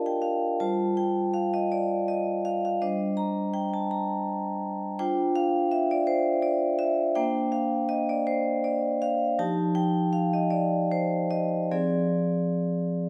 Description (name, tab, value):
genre	classical, contemporary piece for solo vibraphone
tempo	54 BPM (dotted quarters)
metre	6/8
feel	rubato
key	unclear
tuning	A4 = 440 Hz
part	vibraphone with medium hard mallets	solo	0.0-13.1 s	F3 to Bb5	-26 LUFS	equal	none
room	wet recital hall reverb, RT60 1.6 s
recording	recorded in a church or concert hall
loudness	-27 LUFS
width	mono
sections	0.0-13.1 A section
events	none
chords	0.0 G5/D; 0.6 G7sus4; 2.8 Csus2/G; 5.0 Dm7; 7.2 Bbadd9; 9.4 Fsus2; 11.7 Fm6